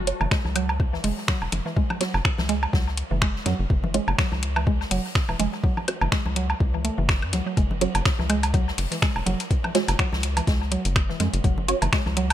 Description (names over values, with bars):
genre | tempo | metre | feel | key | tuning
minimal techno | 124 BPM | 4/4 | swing 56% on 16ths | unclear | A4 = 440 Hz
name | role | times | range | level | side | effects
rubbery square bass | bass | 0.0-12.3 s | E1 to F#2 | -26 LUFS | equal | sidechain pumping
filtered dub chord stab | stabs | 0.1-11.8 s | C#4 to C#5 | -28 LUFS | right 3 dB | phaser, ensemble chorus, ping-pong delay
booming analog drum machine | drums | 0.1-12.3 s | finger snaps, hi-hat | -28 LUFS | left 1 dB | small room ambience
soft-mallet drum kit | drums | 0.1-12.3 s | hi-hat, ride cymbal, snare drum | -36 LUFS | right 1 dB | sidechain pumping on cymbals, high-pass filter on cymbals, small room ambience, sidechain pumping on hats, high-pass filter on hats, high-pass filter on snare, high-pass filter on room
mallet-like synth pluck | riff | 0.2-12.3 s | E3 to A3 | -29 LUFS | right 2 dB | chorus, sidechain pumping, ping-pong delay
woodblock and congas | percussion | 0.2-12.3 s | none | -30 LUFS | right 1 dB | overdrive, small room ambience, ping-pong delay
electronic kick drum | drums | 0.3-12.0 s | none | -23 LUFS | equal | small room ambience
room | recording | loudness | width
small room ambience | none | -21 LUFS | side -12 dB against mid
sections
0.0-12.3 A section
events
filter sweep on synth stab 0.0-12.3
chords
0.0 F#5